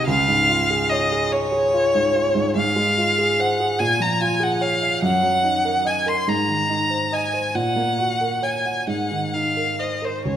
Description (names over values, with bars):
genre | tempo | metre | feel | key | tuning
classical, romantic duo for violin and grand piano | 42-49 BPM (dotted quarters) | 6/8 | rubato | Db major | A4 = 438 Hz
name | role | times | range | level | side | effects
clear violin | melody | 0.0-10.4 s | C5 to C6 | -20 LUFS | left 1 dB | none
warm grand piano | accompaniment | 0.0-10.4 s | Db2 to Gb5 | -22 LUFS | right 1 dB | none
room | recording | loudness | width
moderate scoring stage reverb, RT60 2.0 s | none | -18 LUFS | side -10 dB against mid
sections
0.0-10.4 A section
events
none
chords
0.1 Db; 2.6 Fm/Ab; 3.8 Bbm7; 5.0 Ebm/Gb; 6.3 Ab; 7.5 Gb/Bb; 8.9 Abadd9